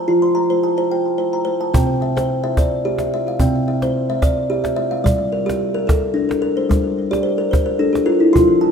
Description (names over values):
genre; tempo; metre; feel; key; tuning
world meditative, meditative tuned percussion; 109 BPM; 3/4; swing 53% on 16ths; G dorian; A4 = 439 Hz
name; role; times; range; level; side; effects
kalimba; arpeggios; 0.0-8.7 s; C3 to C6; -16 LUFS; equal; ping-pong delay
cajon; percussion; 1.7-8.7 s; none; -19 LUFS; equal; none
room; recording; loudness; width
wet echo chamber reverb, RT60 1.6 s, small room reverb; none; -15 LUFS; side -6 dB against mid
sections
0.0-1.7 A section; 1.7-8.7 B section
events
kalimba fill 7.1-8.3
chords
0.0 F; 1.7 C; 5.0 Gm